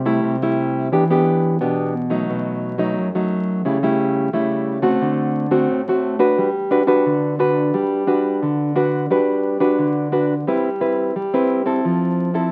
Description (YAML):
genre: samba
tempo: 88 BPM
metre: 4/4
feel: straight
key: G major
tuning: A4 = 440 Hz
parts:
  - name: nylon-string guitar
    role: solo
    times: 0.0-12.5 s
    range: F#2 to B4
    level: -19 LUFS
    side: equal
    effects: none
room: wet studio reverb, RT60 0.5 s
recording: very old 78 rpm record, vinyl crackle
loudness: -19 LUFS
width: mono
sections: 0.0-9.1 A section; 9.1-12.5 B section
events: none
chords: 0.0 Am7/C; 0.9 Em7; 2.3 B7; 3.7 A7/C#; 5.0 D7; 6.4 Gmaj7; 10.5 Cmaj7/G; 11.9 Fmaj7